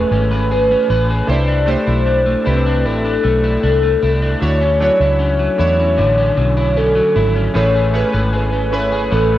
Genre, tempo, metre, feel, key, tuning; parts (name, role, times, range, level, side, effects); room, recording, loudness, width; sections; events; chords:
indie pop; 77 BPM; 4/4; straight; A major; A4 = 444 Hz
hollow clarinet-like synth lead; melody; 0.0-9.4 s; A4 to D5; -17 LUFS; equal; wide subtle chorus, slapback echo
chorused retro synth keys; accompaniment; 0.0-9.4 s; A3 to G#5; -24 LUFS; right 2 dB; cassette tape
electric guitar at the edge of break-up; accompaniment; 0.0-9.4 s; D3 to B4; -20 LUFS; left 2 dB; analog chorus, vibrato effect
vintage muted fingered electric bass; bass; 0.0-9.4 s; G#1 to E2; -17 LUFS; equal
wet spring reverb, RT60 2.0 s; worn, warbling old tape, cassette tape, warbly pitch drift; -13 LUFS; side -13 dB against mid
0.0-9.4 A section
0.0 Amaj9; 1.3 C69; 4.4 Dmaj9; 7.6 Amaj9